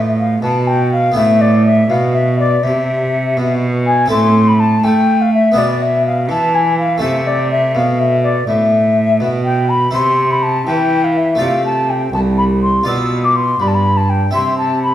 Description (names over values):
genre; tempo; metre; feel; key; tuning
classical, baroque-style sonata movement with continuo; 82 BPM (dotted quarters); 12/8; straight; A minor, C major from 9.9 s; A4 = 438 Hz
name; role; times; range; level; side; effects
harpsichord; accompaniment; 0.0-14.9 s; C2 to E5; -22 LUFS; equal; none
rich cello; bass; 0.0-14.9 s; C2 to A3; -15 LUFS; right 2 dB; none
baroque flute; melody; 0.2-14.9 s; D5 to E6; -15 LUFS; left 2 dB; none
room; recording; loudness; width
wet recital hall reverb, RT60 1.5 s; none; -12 LUFS; side -12 dB against mid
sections
0.0-14.9 A section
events
none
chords
0.0 G9/A; 1.2 E/A; 4.1 Am; 5.6 E/B; 7.0 Am; 9.9 C; 11.4 Dm7/C; 12.9 G7/B; 14.3 C